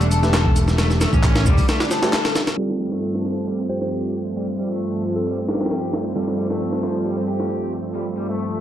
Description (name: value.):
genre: breakbeat, breaks.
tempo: 134 BPM.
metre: 4/4.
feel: straight.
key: unclear.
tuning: A4 = 439 Hz.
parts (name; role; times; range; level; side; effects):
lush unison pad; sustained chords; 0.0-8.6 s; G2 to C4; -26 LUFS; equal; chorus, vintage 12-bit sampler grit, sidechain pumping.
raw garage guitar; riff; 0.0-8.6 s; F3 to A4; -27 LUFS; left 2 dB; overdrive, tube saturation, low-pass filter, ping-pong delay.
picked electric bass; bass; 0.0-1.6 s; E1 to A1; -18 LUFS; equal; tube saturation.
breakbeat sampler-style drum kit; drums; 0.0-8.5 s; hi-hat, kick drum, snare drum; -22 LUFS; equal; high-pass filter on hats, high-pass filter on kick, high-pass filter on snare, high-pass filter on room.
electronic shaker and handclaps; drums; 0.0-2.6 s; none; -30 LUFS; equal; none.
overdriven tine electric piano; stabs; 0.2-8.6 s; G3 to B4; -26 LUFS; right 2 dB; vintage 12-bit sampler grit, ping-pong delay.
soft struck synth lead; melody; 3.7-5.6 s; A4 to C5; -31 LUFS; equal; chorus, small speaker sound, ping-pong delay.
room: light reverb, digital ambience.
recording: dark, warm production, vinyl crackle, low-pass filter.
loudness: -18 LUFS.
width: side -11 dB against mid.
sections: 0.0-2.6 A section; 2.6-8.6 B section.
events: break 1.7-2.6; filter sweep on overdriven electric guitar 2.6-8.6; filter sweep 2.6-8.6.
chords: 0.0 A7sus4; 2.6 G9sus4.